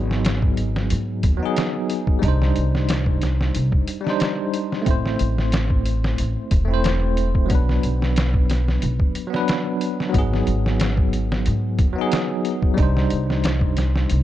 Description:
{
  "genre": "trip hop",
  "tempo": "91 BPM",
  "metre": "4/4",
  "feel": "swing 54% on 16ths",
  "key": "unclear",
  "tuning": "A4 = 440 Hz",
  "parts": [
    { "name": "barky tine electric piano", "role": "accompaniment", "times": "0.0-14.2 s", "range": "F#3 to C5", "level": "-24 LUFS", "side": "equal", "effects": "medium stereo tremolo, tape echo" },
    { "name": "upright bass", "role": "bass", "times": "0.0-14.2 s", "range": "E1 to G#2", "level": "-21 LUFS", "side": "equal", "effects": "none" },
    { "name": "trip hop sampler-style drum kit", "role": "drums", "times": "0.1-14.2 s", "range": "hi-hat, kick drum, snare drum", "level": "-22 LUFS", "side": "equal", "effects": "vintage 12-bit sampler grit" }
  ],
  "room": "digital ambience",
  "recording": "dark, warm production",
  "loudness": "-18 LUFS",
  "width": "side -13 dB against mid",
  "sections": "0.0-14.2 A section",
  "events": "none",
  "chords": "0.0 G#m7; 2.2 Cmadd9; 4.9 Am; 7.5 Bm; 10.1 G#m7; 12.8 Cmadd9"
}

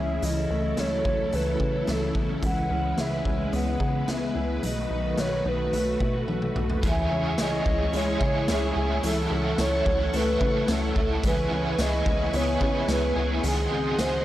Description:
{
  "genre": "dream pop",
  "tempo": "109 BPM",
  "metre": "4/4",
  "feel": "straight",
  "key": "C# minor",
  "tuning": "A4 = 440 Hz",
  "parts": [
    { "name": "hollow clarinet-like synth lead", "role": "melody", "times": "0.0-14.2 s", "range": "G#4 to F#5", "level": "-29 LUFS", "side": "equal", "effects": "chorus, analog delay" },
    { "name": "string machine, violas", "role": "sustained chords", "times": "0.0-14.2 s", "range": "C#3 to C#6", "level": "-32 LUFS", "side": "equal", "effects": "ensemble chorus" },
    { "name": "mellow electric guitar", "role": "arpeggios", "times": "0.0-14.2 s", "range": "D#3 to A4", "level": "-30 LUFS", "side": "left 2 dB", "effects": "lush chorus, analog delay" },
    { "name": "plucky analog bass", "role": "bass", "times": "0.0-14.2 s", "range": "B1 to C#3", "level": "-29 LUFS", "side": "equal", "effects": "none" },
    { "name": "raw garage drum kit", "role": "drums", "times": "0.2-14.1 s", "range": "hi-hat, kick drum, snare drum, tambourine, toms", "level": "-30 LUFS", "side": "equal", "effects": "none" },
    { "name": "biting overdriven guitar", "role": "accompaniment", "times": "6.8-14.2 s", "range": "C#3 to A4", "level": "-31 LUFS", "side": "right 3 dB", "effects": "tremolo, ensemble chorus" }
  ],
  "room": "little or no reverb",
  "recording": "none",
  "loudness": "-23 LUFS",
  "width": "side -14 dB against mid",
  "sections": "0.0-6.8 A section; 6.8-14.2 B section",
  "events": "drum fill 6.3-6.8",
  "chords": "0.2 F#m7/C#; 2.4 E6/C#; 4.6 B7; 6.8 C#m; 9.0 F#m7/C#; 11.2 E6/C#; 13.4 G#7/C#"
}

